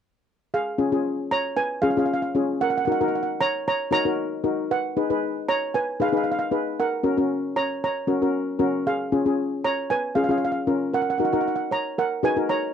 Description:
calypso; 115 BPM; 4/4; swing 53% on 16ths; A4 = 440 Hz
steel pan; melody; 0.5-12.7 s; G#4 to A#5; -24 LUFS; right 4 dB
steel pan; accompaniment; 0.8-12.6 s; C#4 to B4; -24 LUFS; left 3 dB
light reverb; dry, close 1970s-style studio recording; -21 LUFS; side -8 dB against mid
0.5-12.7 A section
0.5 C#; 2.6 D#m7; 4.7 G#m7; 6.8 F#; 8.9 C#; 10.9 D#m7

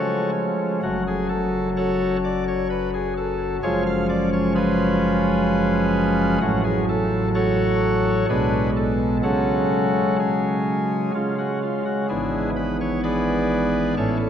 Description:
classical, chorale-style piece for pipe organ; 64 BPM; 3/4; straight; F# minor; A4 = 441 Hz
pipe organ, cornet; solo; 0.0-14.3 s; F#1 to E#5; -19 LUFS; equal
wet cathedral reverb, RT60 4.6 s; nothing above 10.4 kHz; -19 LUFS; side -9 dB against mid
0.8-14.3 A section
0.0 C#; 0.8 F#m; 3.6 C#7/F#; 6.4 F#m/A; 8.3 G#dim/B; 9.2 C#sus4; 11.1 C#5; 12.1 E7/G#

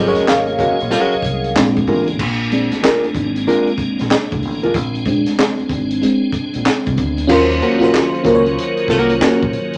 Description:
R&B, neo-soul; 94 BPM; 4/4; swing 63% on 16ths; A4 = 440 Hz
nylon-string guitar; second line; 0.0-9.4 s; Ab3 to Bb4; -19 LUFS; equal
FM electric piano with soft pad layer; accompaniment; 0.0-9.8 s; Gb3 to Gb5; -20 LUFS; equal; chorus
tonewheel organ; sustained chords; 0.0-9.8 s; Eb3 to Ab4; -28 LUFS; equal; chorus vibrato, slow rotary speaker
deep dub fingered electric bass; bass; 0.0-9.8 s; Ab1 to Eb2; -27 LUFS; equal
crunchy breakbeat drum kit; drums; 0.1-9.8 s; crash cymbal, handclaps, hi-hat, kick drum, snare drum; -22 LUFS; equal
congas; percussion; 0.2-7.3 s; -34 LUFS; equal
wet studio reverb, RT60 0.5 s; -16 LUFS; mono
0.0-2.2 A section; 2.2-7.3 B section; 7.3-9.8 C section
FM electric piano solo 0.0-2.2, 2.2-7.3
0.0 Ab9sus4; 1.6 Bb7; 7.3 Ebm7

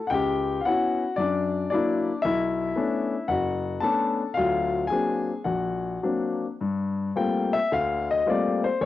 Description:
solo jazz; 111 BPM; 4/4; swing 67% on 8ths, rubato; A4 = 439 Hz
warm baby grand piano; solo; 0.0-8.9 s; F#1 to A5; -23 LUFS; left 3 dB; cassette tape
studio ambience; home recording on cassette; -23 LUFS; side -13 dB against mid
0.0-6.6 A section; 6.6-8.9 B section
grand piano solo 6.6-8.9
0.1 C#m7b5; 1.2 F#7b13; 2.2 Bm9; 4.4 D7alt; 6.6 Gm11

